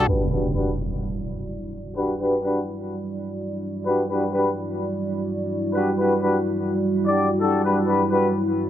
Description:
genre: breakbeat.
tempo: 127 BPM.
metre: 4/4.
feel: swing 58% on 16ths.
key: E dorian.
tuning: A4 = 439 Hz.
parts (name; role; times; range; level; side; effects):
dark analog pad; sustained chords; 0.0-8.7 s; G3 to D5; -25 LUFS; right 1 dB; chorus.
mellow brass ensemble; stabs; 0.0-8.3 s; D4 to D5; -22 LUFS; left 2 dB; vintage 12-bit sampler grit, low-pass filter, ping-pong delay.
impact; sound effects; 0.1-2.0 s; none; -26 LUFS; equal; none.
room: wet small room reverb, RT60 0.5 s.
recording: heavily compressed radio sound, vinyl crackle, low-pass filter.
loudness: -21 LUFS.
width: side -11 dB against mid.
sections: 0.1-8.7 A section.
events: impact 0.1-2.0; filter sweep on brass ensemble 0.1-8.7; filter sweep on analog synth pad 0.1-8.7; filter sweep 0.1-8.7.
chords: 0.1 Em9.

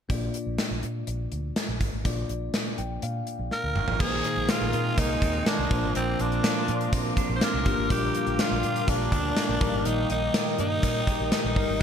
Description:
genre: 1980s-style pop.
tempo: 123 BPM.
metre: 4/4.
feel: straight.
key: Bb mixolydian.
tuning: A4 = 440 Hz.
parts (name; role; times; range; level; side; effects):
bell-like tine electric piano; accompaniment; 0.1-11.8 s; Bb2 to G5; -32 LUFS; left 4 dB; phaser.
vintage muted fingered electric bass; bass; 0.1-11.8 s; G1 to Bb2; -31 LUFS; equal; none.
gated 80s drum kit; drums; 0.1-11.8 s; crash cymbal, hi-hat, kick drum, snare drum, toms; -28 LUFS; equal; none.
raspy tenor saxophone; melody; 3.5-11.8 s; C4 to C5; -29 LUFS; equal; digital delay.
crunchy overdriven guitar; accompaniment; 4.0-11.8 s; G2 to Eb4; -38 LUFS; right 2 dB; none.
glassy FM pad; sustained chords; 4.0-11.8 s; Bb4 to Eb6; -33 LUFS; left 2 dB; ensemble chorus, built-in reverb.
twelve-string electric guitar; riff; 4.0-11.8 s; Eb3 to G4; -34 LUFS; right 8 dB; lush chorus.
room: moderate lush hall reverb, RT60 2.7 s.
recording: dark, warm production.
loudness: -24 LUFS.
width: side -8 dB against mid.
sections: 0.1-4.0 A section; 4.0-11.8 B section.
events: tine electric piano fill 2.5-4.0; drum fill 3.5-4.0.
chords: 0.1 Bb; 4.0 Abadd9/Bb; 5.7 Bbadd9; 7.9 Gm7/Bb; 9.6 Eb.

